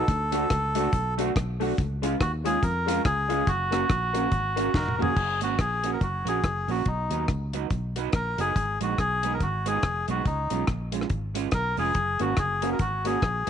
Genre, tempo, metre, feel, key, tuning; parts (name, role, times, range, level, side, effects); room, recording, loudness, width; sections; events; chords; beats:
ska; 142 BPM; 4/4; swing 58% on 8ths; F# major; A4 = 440 Hz
melodica; melody; 0.0-13.5 s; D#4 to A#4; -27 LUFS; left 1 dB
electric guitar at the edge of break-up; accompaniment; 0.0-13.5 s; F#3 to F#4; -32 LUFS; right 14 dB
fingered electric bass; bass; 0.1-13.5 s; E#1 to E#2; -30 LUFS; equal
deep reggae drum kit; drums; 0.1-13.5 s; crash cymbal, hi-hat, kick drum, rim click, snare drum, toms; -28 LUFS; equal
warm upright piano; stabs; 0.3-5.1, 12.2-13.5 s; G#3 to F#4; -32 LUFS; left 13 dB
light reverb, small room ambience; 1960s-style stereo with parts hard left and right, nothing above 10.5 kHz; -24 LUFS; side -8 dB against mid
0.0-5.2 A section; 5.2-13.5 B section
drum fill 4.7-5.2
0.1 D; 1.8 C#; 3.5 F#; 6.9 B; 8.6 G#m; 10.3 C#; 12.0 F#
| 0.09 0.51 0.93 1.36 | 1.78 2.21 2.63 3.05 | 3.48 3.90 4.32 4.75 | 5.17 5.59 6.02 6.44 | 6.87 7.29 7.71 8.14 | 8.56 8.99 9.41 9.84 | 10.26 10.68 11.11 11.53 | 11.96 12.38 12.80 13.23